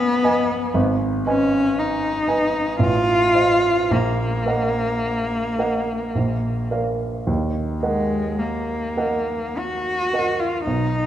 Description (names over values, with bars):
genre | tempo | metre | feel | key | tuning
classical, romantic duo for cello and grand piano | 48-60 BPM | 3/4 | rubato | Eb minor | A4 = 438 Hz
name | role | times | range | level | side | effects
rich cello | melody | 0.0-11.1 s | Ab3 to Gb4 | -21 LUFS | left 1 dB | none
warm baby grand piano | accompaniment | 0.0-11.1 s | Ab1 to Ab5 | -22 LUFS | right 2 dB | none
room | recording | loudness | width
moderate concert hall reverb, RT60 2.4 s | none | -19 LUFS | side -11 dB against mid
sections
0.0-11.1 A section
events
none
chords
0.0 Abm/Cb; 0.7 Abm; 2.8 F7/A; 3.9 Ebm/Bb; 6.2 Bb; 7.3 Ebm